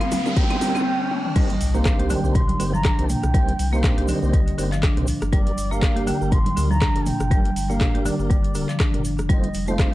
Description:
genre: afro house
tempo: 121 BPM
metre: 4/4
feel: swing 56% on 16ths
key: unclear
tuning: A4 = 437 Hz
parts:
  - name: mellow bansuri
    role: melody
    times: 0.0-9.9 s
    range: D5 to C6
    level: -30 LUFS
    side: right 1 dB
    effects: tape echo
  - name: ethereal airy pad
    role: sustained chords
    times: 0.0-0.8 s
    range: D3 to F4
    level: -39 LUFS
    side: left 2 dB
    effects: none
  - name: marimba with hard mallets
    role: arpeggios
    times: 0.0-9.9 s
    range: D3 to G4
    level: -26 LUFS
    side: equal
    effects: sidechain pumping, tape echo
  - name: mellow tonewheel organ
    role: stabs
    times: 0.0-9.9 s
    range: A3 to C5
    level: -31 LUFS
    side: right 2 dB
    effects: chorus vibrato, fast rotary speaker, sidechain pumping, tape echo
  - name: deep house drum kit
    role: drums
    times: 0.0-9.9 s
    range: crash cymbal, handclaps, hi-hat, rim click, toms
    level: -29 LUFS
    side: equal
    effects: overdrive, small room ambience
  - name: congas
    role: percussion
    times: 0.0-9.8 s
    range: none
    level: -31 LUFS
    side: right 3 dB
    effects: none
  - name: riser, noise sweep and impact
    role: sound effects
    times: 0.0-3.3 s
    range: none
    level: -30 LUFS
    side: equal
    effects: none
  - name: egg shaker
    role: percussion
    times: 0.1-9.9 s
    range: none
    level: -40 LUFS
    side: right 1 dB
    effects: none
  - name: electronic kick drum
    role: drums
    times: 0.4-9.9 s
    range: none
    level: -20 LUFS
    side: equal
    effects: small room ambience
  - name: round analog bass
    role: bass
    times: 1.6-9.9 s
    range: D1 to D2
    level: -25 LUFS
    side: equal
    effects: sidechain pumping
room: studio ambience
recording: dry, gritty hardware recording, cassette tape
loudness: -18 LUFS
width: side -16 dB against mid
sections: 0.0-1.4 A section; 1.4-9.9 B section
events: build-up 0.0-1.4; drum fill 0.0-0.9, 1.1; riser 0.0-1.4; noise sweep 0.0-1.4; filter sweep on marimba 0.0-1.4; filter sweep on bansuri 0.0-1.4; break 0.9-1.4; drop 1.4-9.9; impact 1.4-3.3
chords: 0.0 Gm; 1.4 Cm7; 5.3 Gm; 9.3 F7

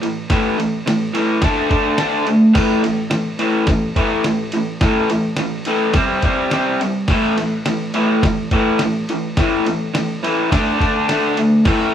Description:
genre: garage rock duo or trio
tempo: 106 BPM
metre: 4/4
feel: straight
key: A minor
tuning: A4 = 440 Hz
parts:
  - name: raw garage guitar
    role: riff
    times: 0.0-11.9 s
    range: A2 to D4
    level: -16 LUFS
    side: equal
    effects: overdrive
  - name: lo-fi sampler-style drum kit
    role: drums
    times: 0.0-11.8 s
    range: crash cymbal, kick drum, ride cymbal, snare drum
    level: -22 LUFS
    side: equal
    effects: none
room: moderate large studio reverb, RT60 1.2 s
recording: band playing live in one room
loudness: -15 LUFS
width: side -9 dB against mid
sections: 0.0-11.9 A section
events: none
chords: 0.0 A5; 1.4 D5; 2.5 A5; 5.9 C5; 7.1 A5; 10.5 D5

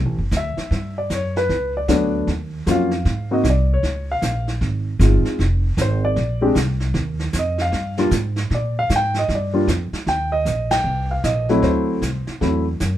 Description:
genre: jazz piano trio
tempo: 154 BPM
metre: 4/4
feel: swing 64% on 8ths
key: unclear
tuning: A4 = 439 Hz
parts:
  - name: upright bass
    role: bass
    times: 0.0-13.0 s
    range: F1 to Bb2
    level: -21 LUFS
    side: equal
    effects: none
  - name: vintage brush drum kit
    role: drums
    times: 0.3-13.0 s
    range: brushed snare drum, hi-hat, kick drum, ride cymbal, snare drum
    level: -27 LUFS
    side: right 1 dB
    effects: none
  - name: warm concert grand piano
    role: melody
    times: 0.4-12.6 s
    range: F#3 to G5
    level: -20 LUFS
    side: left 1 dB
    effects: none
room: light reverb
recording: minimal, uncompressed stereo recording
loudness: -18 LUFS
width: side -12 dB against mid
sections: 0.0-10.1 A section; 10.1-13.0 B section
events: grand piano solo 0.0-10.1; band accent 10.7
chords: 0.0 D; 0.7 Gmaj9; 2.3 Ebm9; 3.1 Ab; 3.8 Dbmaj7; 5.4 Fm; 6.2 Bbadd9; 7.0 Ebmaj9; 10.1 Eb; 11.6 D7

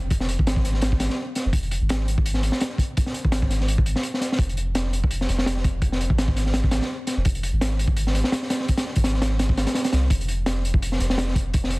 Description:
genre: drum and bass, jungle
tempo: 168 BPM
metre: 4/4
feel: swing 55% on 16ths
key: F minor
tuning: A4 = 440 Hz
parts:
  - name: soft dub sub bass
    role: bass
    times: 0.0-11.8 s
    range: F1 to C2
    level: -24 LUFS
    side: equal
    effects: none
  - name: crunchy breakbeat drum kit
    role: drums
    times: 0.1-11.8 s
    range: hi-hat, kick drum, snare drum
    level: -22 LUFS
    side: equal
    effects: none
room: little or no reverb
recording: dense, heavily limited modern master, vinyl crackle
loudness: -20 LUFS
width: side -24 dB against mid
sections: 0.0-11.8 A section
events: none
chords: none

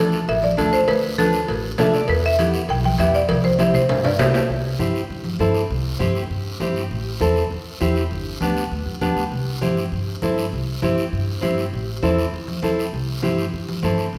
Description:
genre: latin, cumbia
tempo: 199 BPM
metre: 4/4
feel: straight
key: C major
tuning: A4 = 440 Hz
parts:
  - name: buzzing marimba with medium hard mallets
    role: melody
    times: 0.0-4.4 s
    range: A4 to G5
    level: -23 LUFS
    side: equal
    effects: none
  - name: nylon-string guitar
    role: accompaniment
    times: 0.0-14.0 s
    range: B3 to E5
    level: -26 LUFS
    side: equal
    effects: none
  - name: upright bass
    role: bass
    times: 0.0-14.2 s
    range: G1 to G2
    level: -27 LUFS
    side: equal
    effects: none
  - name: guiro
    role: percussion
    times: 0.1-14.2 s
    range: none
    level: -37 LUFS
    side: equal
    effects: none
  - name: cowbell and timbales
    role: percussion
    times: 0.3-4.4 s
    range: none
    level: -29 LUFS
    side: equal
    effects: none
  - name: congas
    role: percussion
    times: 0.4-14.0 s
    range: none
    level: -28 LUFS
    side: equal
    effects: none
room: wet recital hall reverb, RT60 1.7 s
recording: recorded in a church or concert hall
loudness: -21 LUFS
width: mono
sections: 0.0-4.5 A section; 4.5-14.1 B section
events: nylon-string guitar fill 1.6-2.1; drum fill 3.3-4.5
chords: 0.0 Dm; 2.1 Em; 3.3 C; 6.9 Am; 8.1 G; 9.3 C; 11.7 Am; 12.9 C

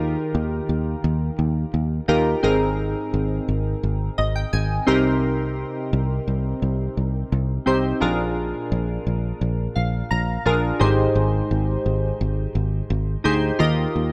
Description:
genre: 1980s-style pop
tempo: 86 BPM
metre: 4/4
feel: straight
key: unclear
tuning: A4 = 440 Hz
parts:
  - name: glassy digital keys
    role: accompaniment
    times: 0.0-14.1 s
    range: Ab2 to C6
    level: -25 LUFS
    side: equal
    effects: chorus, phaser
  - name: fingered electric bass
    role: bass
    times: 0.0-14.1 s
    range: Ab1 to Eb2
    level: -25 LUFS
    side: equal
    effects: none
room: light reverb, digital ambience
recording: none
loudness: -22 LUFS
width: mono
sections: 0.0-10.8 A section; 10.8-14.1 B section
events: synth keys fill 3.8-5.2, 9.4-10.8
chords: 0.0 Ebadd9; 2.4 Abadd9; 4.9 Cm7; 8.0 Bb7; 10.8 Abmaj7; 13.6 Ebadd9

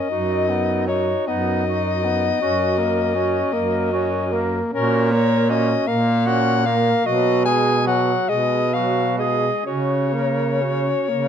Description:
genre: classical, lyrical piece for single-reed quartet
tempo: 41-55 BPM (dotted quarters)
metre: 12/8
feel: rubato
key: F# major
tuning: A4 = 438 Hz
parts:
  - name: clear soprano saxophone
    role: melody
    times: 0.0-11.3 s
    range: A#4 to G#5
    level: -22 LUFS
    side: left 8 dB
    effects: none
  - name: clear clarinet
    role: second line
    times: 0.0-11.3 s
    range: D#4 to A#4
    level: -26 LUFS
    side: right 11 dB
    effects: none
  - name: warm tenor saxophone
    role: accompaniment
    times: 0.0-11.3 s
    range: F#3 to D#4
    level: -24 LUFS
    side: left 1 dB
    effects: none
  - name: mellow baritone saxophone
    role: bass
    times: 0.1-11.3 s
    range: F#2 to C#3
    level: -22 LUFS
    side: right 3 dB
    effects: none
room: light reverb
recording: close, detailed microphones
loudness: -17 LUFS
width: side -8 dB against mid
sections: 0.0-11.3 A section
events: none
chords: 0.1 B/F#; 2.4 F#; 4.7 F#/A#; 7.1 G#m7/B; 9.7 F#/C#

